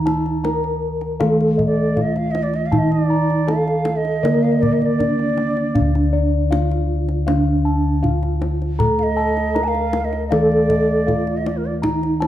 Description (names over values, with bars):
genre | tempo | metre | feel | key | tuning
Javanese gamelan | 79 BPM | 4/4 | straight | D pelog | A4 = 439 Hz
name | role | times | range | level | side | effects
gamelan-type bronze metallophone | melody | 0.0-12.3 s | D4 to Bb4 | -22 LUFS | right 1 dB | none
gamelan-type bronze metallophone | accompaniment | 0.0-12.3 s | D3 to Bb3 | -23 LUFS | right 1 dB | none
gamelan-type bossed gongs | arpeggios | 0.0-12.3 s | D5 to Bb5 | -27 LUFS | left 3 dB | none
gamelan-type bossed gongs | bass | 0.0-12.3 s | D2 to A4 | -22 LUFS | left 1 dB | none
kendang | percussion | 0.1-12.3 s | none | -26 LUFS | left 2 dB | none
hollow bansuri | second line | 1.7-11.7 s | Bb4 to A5 | -24 LUFS | right 4 dB | none
room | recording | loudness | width
moderate recital hall reverb, RT60 1.4 s | dark, warm production | -16 LUFS | side -12 dB against mid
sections
0.0-12.3 A section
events
none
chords
none